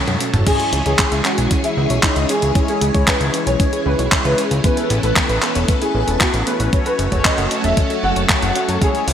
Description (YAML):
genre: italo disco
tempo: 115 BPM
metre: 4/4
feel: straight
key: C# minor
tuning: A4 = 440 Hz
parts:
  - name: phased string machine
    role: sustained chords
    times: 0.0-9.1 s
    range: E3 to A4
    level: -23 LUFS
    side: right 1 dB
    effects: ensemble chorus, phaser
  - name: soft round pluck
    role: arpeggios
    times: 0.0-9.1 s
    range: B3 to A5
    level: -28 LUFS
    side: right 3 dB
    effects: chorus, cassette tape, digital delay
  - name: mellow synth brass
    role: stabs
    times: 0.0-9.1 s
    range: G#3 to C#5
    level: -26 LUFS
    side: left 2 dB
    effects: chorus, cassette tape
  - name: fat analog bass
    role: bass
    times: 0.1-9.1 s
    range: E1 to F#2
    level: -20 LUFS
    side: equal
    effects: tube saturation
  - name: clean 12-bit digital drum machine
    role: drums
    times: 0.1-9.1 s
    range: crash cymbal, handclaps, hi-hat, toms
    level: -20 LUFS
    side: equal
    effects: gated reverb
  - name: clear baby grand piano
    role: melody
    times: 0.5-9.1 s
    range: D#4 to F#5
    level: -22 LUFS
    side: left 1 dB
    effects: ensemble chorus, digital delay
  - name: electronic kick drum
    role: drums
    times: 0.5-8.9 s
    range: none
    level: -18 LUFS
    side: equal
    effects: none
room: moderate lush hall reverb, RT60 2.2 s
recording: bright 1980s-style digital production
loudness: -14 LUFS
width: side -9 dB against mid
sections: 0.5-9.1 A section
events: drum fill 0.0-0.5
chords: 0.5 C#m; 4.6 Aadd9; 6.7 F#m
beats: | 0.47 0.99 1.51 2.03 | 2.55 3.08 3.60 4.12 | 4.64 5.16 5.68 6.21 | 6.73 7.25 7.77 8.29 | 8.81